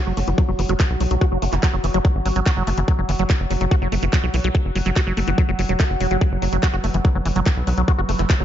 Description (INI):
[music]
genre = psychedelic trance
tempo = 144 BPM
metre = 4/4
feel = straight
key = unclear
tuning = A4 = 442 Hz
[part]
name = overtone-sweeping drone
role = sustained chords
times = 0.0-8.4 s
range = F#3 to B4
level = -28 LUFS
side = right 1 dB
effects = chorus, built-in reverb, phaser, sidechain pumping
[part]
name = liquid acid bass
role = riff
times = 0.1-8.4 s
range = E3 to F#4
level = -24 LUFS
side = equal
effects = phaser, auto-pan, sidechain pumping, tape echo
[part]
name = tight sequencer bass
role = bass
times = 0.1-8.4 s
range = E1 to B1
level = -21 LUFS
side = equal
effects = tube saturation
[part]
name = garage drum kit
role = drums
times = 0.2-8.4 s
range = handclaps, hi-hat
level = -29 LUFS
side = left 1 dB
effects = small room ambience
[part]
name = electronic kick drum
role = drums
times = 0.4-8.4 s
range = none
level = -17 LUFS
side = equal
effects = small room ambience
[sound]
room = light reverb, digital ambience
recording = dark, warm production, nothing above 7.5 kHz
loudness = -17 LUFS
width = side -11 dB against mid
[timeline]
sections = 0.0-8.4 A section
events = filter sweep on acid bass 0.0-8.4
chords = 0.0 Esus2 (rootless)